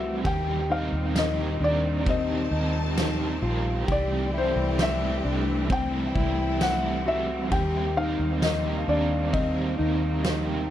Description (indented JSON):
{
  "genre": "dream pop",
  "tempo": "66 BPM",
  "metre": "4/4",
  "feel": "straight",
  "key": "unclear",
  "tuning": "A4 = 439 Hz",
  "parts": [
    { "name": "felt-muted upright piano", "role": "melody", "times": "0.0-10.7 s", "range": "C5 to G5", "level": "-29 LUFS", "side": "left 2 dB", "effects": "digital delay" },
    { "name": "crunchy overdriven guitar", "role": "accompaniment", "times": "0.0-10.7 s", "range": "C3 to Bb4", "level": "-33 LUFS", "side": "right 4 dB", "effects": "tremolo, analog chorus" },
    { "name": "bright studio string section", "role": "sustained chords", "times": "0.0-10.7 s", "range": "Bb2 to A5", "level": "-32 LUFS", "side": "equal", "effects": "none" },
    { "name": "mellow electric guitar", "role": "arpeggios", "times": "0.0-10.7 s", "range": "C4 to G4", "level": "-31 LUFS", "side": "left 3 dB", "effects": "analog chorus, digital delay" },
    { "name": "vintage muted fingered electric bass", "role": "bass", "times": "0.0-10.7 s", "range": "Bb1 to Eb2", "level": "-29 LUFS", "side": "equal", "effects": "none" },
    { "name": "vibraphone with soft mallets", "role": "texture", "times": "0.0-10.7 s", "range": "Eb4 to A5", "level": "-40 LUFS", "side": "right 1 dB", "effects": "none" },
    { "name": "loose indie drum kit", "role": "drums", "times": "0.3-10.5 s", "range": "kick drum, ride cymbal, snare drum, tambourine", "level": "-30 LUFS", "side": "equal", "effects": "none" }
  ],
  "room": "light reverb",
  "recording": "dark, warm production",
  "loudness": "-23 LUFS",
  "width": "side -11 dB against mid",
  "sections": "0.0-10.7 A section",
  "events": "none",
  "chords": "0.3 Eb6; 3.9 C6; 7.5 Eb6"
}